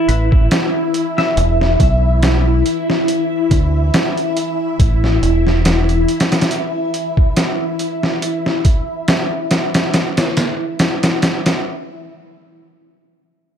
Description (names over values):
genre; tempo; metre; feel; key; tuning
trip hop; 70 BPM; 4/4; swing 55% on 16ths; unclear; A4 = 440 Hz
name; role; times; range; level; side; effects
string machine, cellos; sustained chords; 0.0-11.7 s; E4 to E5; -19 LUFS; left 1 dB; phaser, ensemble chorus
semi-hollow electric guitar; arpeggios; 0.0-1.4 s; B4 to E5; -26 LUFS; left 4 dB; ping-pong delay
deep dub fingered electric bass; bass; 0.1-6.0 s; E1 to D2; -15 LUFS; equal; tube saturation
trip hop sampler-style drum kit; drums; 0.1-11.6 s; hi-hat, kick drum, snare drum; -16 LUFS; equal; none
room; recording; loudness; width
light reverb; none; -14 LUFS; side -8 dB against mid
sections
0.0-11.7 A section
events
none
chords
0.0 Asus2; 1.4 E5; 4.8 N.C.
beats
0.51 | 1.37 2.22 3.08 3.94 | 4.80 5.65 6.51 7.37 | 8.22 9.08 9.94 10.80